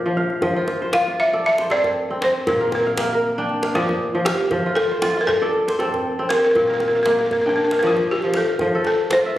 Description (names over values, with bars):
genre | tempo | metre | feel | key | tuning
west african traditional, West African string and xylophone music | 117 BPM | 4/4 | swing 55% on 16ths | F major | A4 = 440 Hz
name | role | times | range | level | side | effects
kora | arpeggios | 0.0-9.4 s | Bb2 to G5 | -22 LUFS | equal | slapback echo
djembe | percussion | 0.3-9.2 s | none | -27 LUFS | equal | none
balafon | melody | 0.9-9.4 s | F4 to F5 | -19 LUFS | equal | none
room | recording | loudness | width
moderate recital hall reverb, RT60 1.5 s | recorded on a phone in the room, studio reverb | -17 LUFS | side -14 dB against mid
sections
0.0-8.6 A section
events
none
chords
0.4 F; 2.5 Bb; 4.5 F; 6.6 Bb; 8.6 F